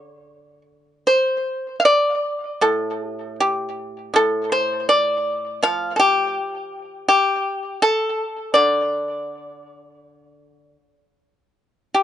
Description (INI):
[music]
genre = chinese traditional, Chinese solo plucked strings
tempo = 73-83 BPM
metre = 4/4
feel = rubato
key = D yu mode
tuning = A4 = 440 Hz
[part]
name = pipa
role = solo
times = 0.0-12.0 s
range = A2 to F5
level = -18 LUFS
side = equal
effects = tape echo
[sound]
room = light reverb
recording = nothing above 11.0 kHz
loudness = -18 LUFS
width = side -10 dB against mid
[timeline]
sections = 0.0-12.0 A section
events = none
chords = none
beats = 0.24 | 1.05 1.85 2.64 3.40 | 4.16 4.91 5.65 6.39 | 7.13 7.85 8.57 9.30 | 10.03 10.78 11.54